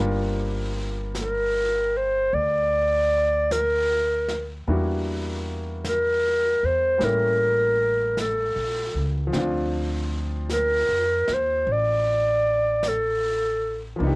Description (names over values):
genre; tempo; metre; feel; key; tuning
jazz ballad; 51 BPM; 4/4; swing 67% on 8ths; unclear; A4 = 444 Hz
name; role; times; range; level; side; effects
bright upright piano; accompaniment; 0.0-14.2 s; F3 to C5; -30 LUFS; left 1 dB; none
upright bass; bass; 0.0-14.2 s; G1 to F2; -29 LUFS; equal; none
vintage brush drum kit; drums; 1.1-14.2 s; brushed snare drum, hi-hat, snare drum; -36 LUFS; equal; cassette tape
mellow clarinet; melody; 1.2-13.8 s; A4 to D5; -21 LUFS; equal; none
room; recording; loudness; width
light reverb; home recording on cassette; -21 LUFS; side -24 dB against mid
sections
0.0-14.2 A section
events
none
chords
0.0 Gm7; 4.7 Em7b5; 7.0 A7b9; 9.3 Dm7